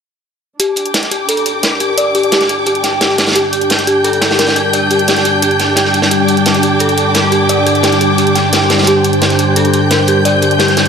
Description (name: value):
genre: dark technical drum and bass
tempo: 174 BPM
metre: 4/4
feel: straight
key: unclear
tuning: A4 = 440 Hz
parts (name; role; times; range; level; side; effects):
- deep dark ambient pad; sustained chords; 2.9-10.9 s; G3 to C6; -16 LUFS; left 1 dB; chorus, built-in reverb
- dark detuned synth bell; arpeggios; 0.6-10.8 s; G4 to G5; -15 LUFS; left 1 dB; chorus, phaser, low-pass filter, ping-pong delay
- crunchy breakbeat drum kit; drums; 0.6-10.9 s; hi-hat, snare drum; -17 LUFS; right 1 dB; high-pass filter on hats, high-pass filter on snare, high-pass filter on room
- electronic hi-hat; drums; 0.6-10.9 s; none; -19 LUFS; equal; none
- dark studio string section; texture; 0.6-10.9 s; D4 to G6; -14 LUFS; right 1 dB; none
room: wet huge ambient reverb, RT60 5.3 s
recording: dreamy mix soaked in reverb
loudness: -10 LUFS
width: side -6 dB against mid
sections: 0.6-10.9 A section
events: filter sweep on ambient pad 0.6-10.9; filter sweep on synth bell 0.6-10.9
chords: 0.6 G5